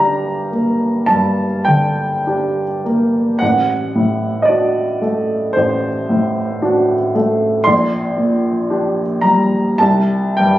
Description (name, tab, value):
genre	classical, romantic nocturne for solo piano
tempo	49-59 BPM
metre	4/4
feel	rubato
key	G minor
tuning	A4 = 440 Hz
part	warm baby grand piano	solo	0.0-10.6 s	A1 to C6	-14 LUFS	equal	none
room	wet stone room reverb, RT60 1.3 s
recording	recorded on a phone in the room, club reverb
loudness	-14 LUFS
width	side -14 dB against mid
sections	0.0-10.6 A section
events	none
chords	0.0 Gm; 3.4 D7/A; 7.7 Gm/Bb; 9.8 C5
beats	1.09 2.27 | 3.41 4.50 5.57 6.63 | 7.68 8.70 9.81